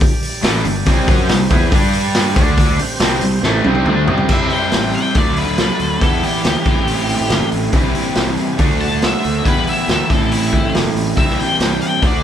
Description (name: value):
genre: blues rock power trio and southern rock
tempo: 140 BPM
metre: 4/4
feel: straight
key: unclear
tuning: A4 = 440 Hz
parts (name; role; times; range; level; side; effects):
- overdriven tonewheel organ; sustained chords; 0.0-4.3 s; C4 to D5; -26 LUFS; right 4 dB; slow rotary speaker
- raw garage drum kit; drums; 0.0-12.1 s; crash cymbal, hi-hat, kick drum, snare drum, toms; -16 LUFS; equal; none
- overdriven semi-hollow guitar; riff; 0.4-12.2 s; G2 to G4; -18 LUFS; equal; spring reverb
- fuzz fingered electric bass; bass; 0.4-12.2 s; F#1 to G2; -22 LUFS; equal; overdrive
- octave-fuzz lead guitar; melody; 4.3-12.2 s; E4 to A5; -21 LUFS; left 2 dB; distortion
room: light reverb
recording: band playing live in one room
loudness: -13 LUFS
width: side -10 dB against mid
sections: 0.0-4.3 A section; 4.3-12.2 B section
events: drum fill 3.4-4.3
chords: 0.0 G5; 0.9 C5; 1.7 G5; 2.4 D5; 2.8 C5; 4.3 C; 5.2 D; 6.0 Em; 6.7 Am; 7.7 C; 8.6 D; 9.5 Em; 10.1 Am; 11.2 C